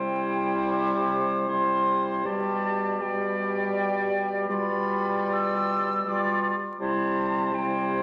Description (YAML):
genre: classical, slow romantic movement for wind quintet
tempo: 69-83 BPM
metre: 3/4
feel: rubato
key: C major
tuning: A4 = 445 Hz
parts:
  - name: mellow silver concert flute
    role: melody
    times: 0.0-8.0 s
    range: G5 to E6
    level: -32 LUFS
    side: equal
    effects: none
  - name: warm oboe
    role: second line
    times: 0.0-8.0 s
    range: C5 to D5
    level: -32 LUFS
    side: equal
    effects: none
  - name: clear French horn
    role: accompaniment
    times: 0.0-8.0 s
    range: G3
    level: -32 LUFS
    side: equal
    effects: none
  - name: warm clarinet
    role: accompaniment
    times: 0.0-8.0 s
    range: E4 to G4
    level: -34 LUFS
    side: equal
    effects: none
  - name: mellow bassoon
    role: bass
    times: 0.0-8.0 s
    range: B2 to C3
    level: -36 LUFS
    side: equal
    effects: none
room: wet recital hall reverb, RT60 1.6 s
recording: vinyl crackle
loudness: -26 LUFS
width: mono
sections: 0.0-8.0 A section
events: none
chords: 0.0 C; 2.2 G/B; 4.5 G7/B; 6.8 C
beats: 0.71 1.48 | 2.25 3.02 3.76 | 4.50 5.31 6.07 | 6.80 7.54